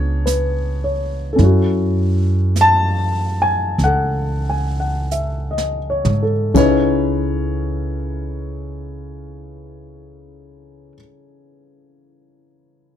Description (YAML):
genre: jazz ballad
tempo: 40-55 BPM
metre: 4/4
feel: swing 67% on 8ths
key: C# minor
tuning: A4 = 442 Hz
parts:
  - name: warm concert grand piano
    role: accompaniment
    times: 0.0-13.0 s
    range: C#3 to A5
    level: -19 LUFS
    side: left 2 dB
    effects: none
  - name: upright bass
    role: bass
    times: 0.0-10.9 s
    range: C#2 to G#2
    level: -19 LUFS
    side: right 1 dB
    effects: none
  - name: jazz brush drum kit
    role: drums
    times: 0.3-7.0 s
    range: brushed snare drum, hi-hat, kick drum, snare drum, splash cymbal, toms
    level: -24 LUFS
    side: right 4 dB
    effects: none
room: little or no reverb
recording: dark, warm production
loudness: -16 LUFS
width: side -10 dB against mid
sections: 0.0-1.4 A section; 1.4-6.5 B section; 6.5-12.5 C section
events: slowing down 0.0-6.5; drum fill 5.1-6.5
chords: 0.0 C#7b9; 1.4 F#m9; 6.5 C#m9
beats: 0.27 | 1.39 2.55 3.79 5.11 | 6.54 8.05 9.54 11.03